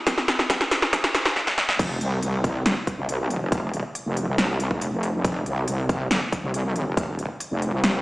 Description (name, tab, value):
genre	heavy wobble dubstep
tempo	139 BPM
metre	4/4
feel	half-time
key	unclear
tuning	A4 = 440 Hz
part	big-room dance drum kit	drums	0.1-7.9 s	crash cymbal, hi-hat, snare drum	-23 LUFS	equal	overdrive, high-pass filter on hats, high-pass filter on snare, high-pass filter on cymbals
part	electronic kick drum	drums	0.1-7.1 s	none	-26 LUFS	equal	overdrive
part	wobble bass	bass	1.8-8.0 s	F1 to C2	-24 LUFS	equal	chorus, overdrive
room	moderate digital room reverb, RT60 1.2 s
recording	played on a big sound system in a bare room, stone room reverb, high-pass filter, small speaker sound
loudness	-22 LUFS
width	side -20 dB against mid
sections	0.0-1.8 A section; 1.8-8.0 B section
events	build-up 0.0-1.8; drum fill 0.0-1.4, 1.4-1.8; filter sweep 0.0-1.8; drop 1.8-8.0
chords	none